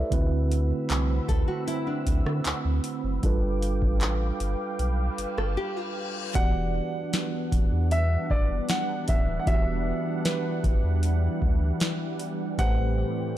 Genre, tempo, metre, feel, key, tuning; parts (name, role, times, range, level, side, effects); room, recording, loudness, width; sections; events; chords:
contemporary R&B; 77 BPM; 4/4; straight; E minor; A4 = 440 Hz
mellow tine electric piano; accompaniment; 0.0-13.4 s; A2 to E5; -32 LUFS; right 3 dB; medium stereo tremolo
saturated sub bass; bass; 0.0-13.0 s; D1 to D3; -26 LUFS; equal
warm analog pad; sustained chords; 0.1-13.4 s; E3 to E6; -33 LUFS; equal; chorus
booming analog drum machine; drums; 0.1-12.8 s; handclaps, hi-hat, kick drum, rim click, snare drum; -26 LUFS; equal
nylon-string guitar; arpeggios; 1.3-6.3 s; D4 to A4; -33 LUFS; left 2 dB; ping-pong delay
reverse cymbal; sound effects; 5.1-6.4 s; -40 LUFS; left 6 dB
warm grand piano; melody; 6.4-13.4 s; B4 to F#5; -32 LUFS; equal; ping-pong delay
little or no reverb; dark, warm production; -24 LUFS; side -13 dB against mid
0.0-6.4 A section; 6.4-13.4 B section
reverse cymbal 5.1-6.4; break 5.6-6.4
0.1 D13; 3.2 G7; 6.4 Em9; 12.6 Am7